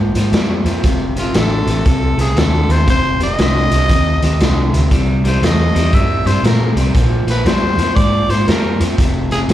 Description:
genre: electric blues shuffle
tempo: 118 BPM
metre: 4/4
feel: swing 64% on 8ths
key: F mixolydian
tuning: A4 = 440 Hz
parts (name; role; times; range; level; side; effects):
- electric guitar through a small old amp; riff; 0.0-9.5 s; F2 to A3; -20 LUFS; left 2 dB; slapback echo
- vintage muted fingered electric bass; bass; 0.0-9.5 s; F1 to Bb2; -16 LUFS; equal; none
- raw garage drum kit; drums; 0.2-9.5 s; hi-hat, kick drum, snare drum; -17 LUFS; equal; none
- growling tenor saxophone; melody; 1.2-9.4 s; F4 to E5; -20 LUFS; equal; slapback echo
room: light reverb, small room ambience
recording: live gig heard through the venue's PA, club reverb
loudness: -12 LUFS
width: side -12 dB against mid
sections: 0.0-9.5 A section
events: none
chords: 0.0 Bb7(no3); 0.8 F7; 4.9 C7; 6.9 Bb5; 9.0 F5

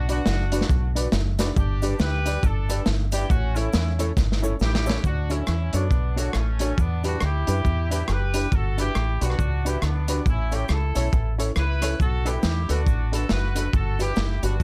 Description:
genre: ska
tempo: 138 BPM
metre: 4/4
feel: swing 60% on 8ths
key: D major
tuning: A4 = 440 Hz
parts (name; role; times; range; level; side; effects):
- clear horn section; melody; 0.0-14.6 s; A3 to B4; -33 LUFS; equal; none
- deep dub fingered electric bass; bass; 0.0-14.6 s; F#1 to F#2; -26 LUFS; equal; none
- mellow electric guitar; accompaniment; 0.1-14.6 s; D4 to C#5; -33 LUFS; equal; subtle chorus
- dark upright piano; stabs; 0.1-14.5 s; C#4 to D5; -34 LUFS; equal; none
- crunchy breakbeat drum kit; drums; 0.1-14.6 s; hi-hat, kick drum, rim click, snare drum; -28 LUFS; equal; none
- cabasa; percussion; 0.1-14.6 s; none; -45 LUFS; equal; none
room: little or no reverb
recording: none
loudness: -23 LUFS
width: mono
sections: 0.0-5.0 A section; 5.0-14.6 B section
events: drum fill 4.2-5.0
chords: 0.0 Bm; 1.6 G; 3.3 A; 5.0 Dmaj7; 6.8 Em7; 8.5 Gmaj7; 10.3 A; 12.0 Bm7; 13.7 Gmaj7

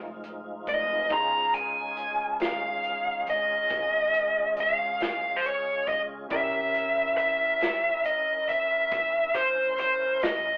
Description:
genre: slow blues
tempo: 46 BPM (dotted quarters)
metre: 12/8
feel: straight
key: unclear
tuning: A4 = 440 Hz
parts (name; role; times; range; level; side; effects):
- clear baby grand piano; accompaniment; 0.0-10.6 s; Db4 to C6; -42 LUFS; equal; none
- tonewheel organ; sustained chords; 0.0-10.6 s; F3 to Bb4; -42 LUFS; equal; slow rotary speaker, chorus vibrato
- upright bass; bass; 0.0-10.6 s; F1 to G2; -52 LUFS; equal; none
- natural country drum kit; drums; 0.2-10.4 s; hi-hat, kick drum, snare drum; -36 LUFS; equal; none
- dark smooth lead guitar; melody; 0.7-10.6 s; C5 to Bb5; -27 LUFS; equal; overdrive
room: moderate studio reverb, RT60 0.7 s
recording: rough rehearsal-room recording, tube saturation, telephone sound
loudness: -27 LUFS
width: mono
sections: 0.0-10.6 A section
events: none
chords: 0.0 Fm9; 1.1 Dbmaj7; 6.3 C7b9

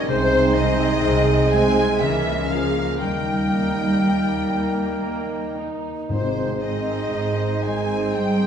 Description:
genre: classical, slow romantic movement for symphony orchestra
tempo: 56-65 BPM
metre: 3/4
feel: rubato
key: Ab major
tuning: A4 = 440 Hz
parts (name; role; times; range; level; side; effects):
- rich symphonic violin section; melody; 0.0-8.5 s; C5 to Ab5; -28 LUFS; left 2 dB; none
- clear oboe; second line; 0.0-8.5 s; Bb4 to C5; -33 LUFS; right 1 dB; none
- hollow concert flute; second line; 0.0-8.5 s; C5 to Ab5; -31 LUFS; left 1 dB; none
- warm clarinet; second line; 0.0-8.5 s; Db4 to Eb4; -31 LUFS; right 1 dB; none
- warm symphonic violin section; second line; 0.0-8.5 s; C5 to Ab5; -31 LUFS; left 3 dB; none
- mellow bassoon; accompaniment; 0.0-8.5 s; Ab3 to Bb3; -28 LUFS; right 4 dB; none
- warm symphonic viola section; accompaniment; 0.0-8.5 s; G3 to Ab4; -30 LUFS; right 3 dB; none
- bright trombone section; sustained chords; 0.0-8.5 s; C3 to Ab3; -30 LUFS; right 4 dB; none
- mellow French horn section; sustained chords; 0.0-8.5 s; Bb3 to Eb4; -29 LUFS; left 4 dB; none
- concert harp; arpeggios; 0.0-8.5 s; Ab2 to C5; -30 LUFS; left 8 dB; none
- warm symphonic cello section; bass; 0.0-8.5 s; C3 to Ab3; -25 LUFS; right 1 dB; none
- dark studio double bass section; bass; 0.1-8.5 s; Ab1 to Eb2; -28 LUFS; right 3 dB; none
- timpani; percussion; 6.1-7.6 s; Ab2; -30 LUFS; left 1 dB; none
room: wet recital hall reverb, RT60 1.6 s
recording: small room ambience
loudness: -18 LUFS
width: side -8 dB against mid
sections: 0.0-8.5 A section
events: none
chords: 0.1 Ab/C; 2.0 Bbm7b5/Db; 3.0 Eb; 6.1 Ab

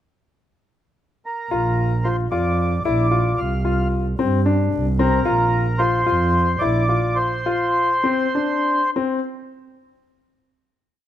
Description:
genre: contemporary instrumental, chamber music in an uneven meter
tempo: 223 BPM (eighths)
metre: 7/8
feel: uneven beats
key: Bb lydian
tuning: A4 = 439 Hz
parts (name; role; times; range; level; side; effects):
- mellow accordion; melody; 1.3-8.9 s; Bb4 to F5; -22 LUFS; right 1 dB; none
- clear concert grand piano; arpeggios; 1.5-9.2 s; C4 to F4; -22 LUFS; left 4 dB; none
- dark double bass; bass; 1.5-7.1 s; Bb1 to G2; -21 LUFS; right 2 dB; none
room: light reverb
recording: close, detailed microphones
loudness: -17 LUFS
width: side -11 dB against mid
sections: 0.0-1.5 pickup bar; 1.5-9.3 A section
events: slowing down 5.3-9.3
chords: 0.0 N.C.; 1.5 Bb; 3.4 Csus4; 5.3 Bbadd9; 7.2 Csus24

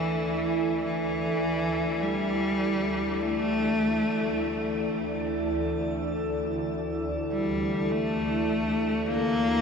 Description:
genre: dark ambient drone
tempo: free time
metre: none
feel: none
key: unclear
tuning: A4 = 440 Hz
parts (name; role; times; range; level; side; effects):
- clear cello; melody; 0.0-9.6 s; E3 to Bb3; -28 LUFS; left 1 dB; shimmer reverb, diffuse ambient delay
- deep dark ambient pad; sustained chords; 0.0-9.6 s; E4 to D5; -28 LUFS; right 1 dB; chorus, built-in reverb, shimmer reverb
- swarming drone; drone; 0.0-9.6 s; D2; -38 LUFS; equal; built-in reverb
room: wet huge ambient reverb, RT60 7.9 s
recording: none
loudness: -25 LUFS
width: side -6 dB against mid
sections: 0.0-9.6 A section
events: fade-in on synth drone 0.0-9.6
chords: 0.0 Dsus2

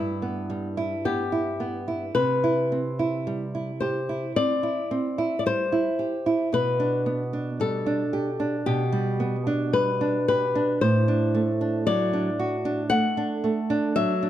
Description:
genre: romantic duo for nylon-string guitar and classical guitar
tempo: 56 BPM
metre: 4/4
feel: rubato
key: G major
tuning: A4 = 440 Hz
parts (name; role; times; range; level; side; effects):
- flamenco guitar; melody; 0.0-14.3 s; E4 to F#5; -26 LUFS; left 4 dB; none
- nylon-string guitar; accompaniment; 0.0-14.3 s; G2 to G4; -25 LUFS; right 3 dB; none
room: light reverb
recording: close, detailed microphones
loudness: -22 LUFS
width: side -12 dB against mid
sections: 0.0-14.3 A section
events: none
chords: 0.0 Em/G; 2.2 C; 6.5 G/B; 10.8 D7/A

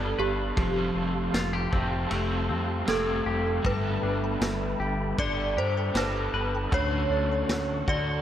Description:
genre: dream pop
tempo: 78 BPM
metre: 4/4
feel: straight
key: G mixolydian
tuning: A4 = 440 Hz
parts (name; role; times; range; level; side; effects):
- synth chime; melody; 0.0-8.2 s; G4 to D5; -30 LUFS; equal; ensemble chorus, phaser, digital delay
- crunchy overdriven guitar; accompaniment; 0.0-8.2 s; D3 to A4; -33 LUFS; right 2 dB; tremolo, lush chorus
- mellow tonewheel organ; sustained chords; 0.0-8.2 s; G4 to C#6; -35 LUFS; right 1 dB; chorus vibrato, fast rotary speaker
- semi-hollow electric guitar; arpeggios; 0.0-8.2 s; D3 to B4; -32 LUFS; left 3 dB; lush chorus, digital delay
- fat analog bass; bass; 0.0-8.2 s; F1 to G2; -31 LUFS; equal; none
- vibraphone with hard mallets; texture; 0.0-6.1 s; B4 to E5; -45 LUFS; right 4 dB; none
- vintage drum kit; drums; 0.6-8.1 s; kick drum, ride cymbal, snare drum, tambourine; -32 LUFS; equal; none
room: moderate concert hall reverb, RT60 2.0 s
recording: none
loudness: -25 LUFS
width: side -10 dB against mid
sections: 0.0-8.2 A section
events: none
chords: 0.0 Gadd9; 0.6 Fadd9; 3.6 Gadd9; 6.7 Dmaj7

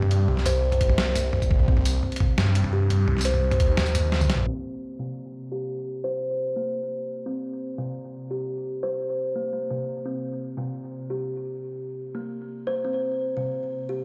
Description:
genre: half-time drum and bass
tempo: 172 BPM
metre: 4/4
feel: half-time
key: C minor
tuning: A4 = 436 Hz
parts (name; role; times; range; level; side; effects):
- kalimba; arpeggios; 0.0-14.0 s; C3 to C5; -31 LUFS; equal; low-pass filter, digital delay
- phased detuned saw bass; bass; 0.0-4.5 s; C2 to G2; -25 LUFS; equal; phaser, tube saturation
- boom bap sampler-style drum kit; drums; 0.0-4.5 s; hi-hat, snare drum, tambourine, toms; -29 LUFS; equal; studio reverb
- electronic kick drum; drums; 0.8-3.7 s; none; -24 LUFS; equal; studio reverb
room: light reverb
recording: played on a big sound system in a bare room, large studio reverb, low-pass filter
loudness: -26 LUFS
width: mono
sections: 0.0-4.5 A section; 4.5-14.0 B section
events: drop 0.0-4.5; kick drops out 3.8-4.5; drum fill 4.1-4.5; filter sweep on kalimba 4.5-14.0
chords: 0.0 Cm; 4.5 C5

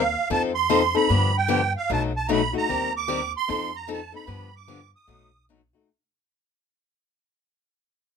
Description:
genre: acoustic string swing (jazz manouche)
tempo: 151 BPM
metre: 4/4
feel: swing 61% on 8ths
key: unclear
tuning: A4 = 435 Hz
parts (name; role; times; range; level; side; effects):
- musette accordion; melody; 0.0-5.5 s; F5 to Eb6; -24 LUFS; right 6 dB; none
- upright bass; bass; 0.0-5.7 s; B1 to G2; -28 LUFS; equal; none
- picked steel-string acoustic guitar; accompaniment; 0.3-5.9 s; B2 to Bb4; -24 LUFS; left 6 dB; none
room: moderate studio ambience, RT60 0.5 s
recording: minimal, uncompressed stereo recording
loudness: -21 LUFS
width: side -6 dB against mid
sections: 0.0-5.9 A section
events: fade-out 0.0-5.9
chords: 0.3 F7; 1.1 G7; 1.9 B7; 2.7 Eb6; 3.5 F7; 4.3 G7; 5.1 B7

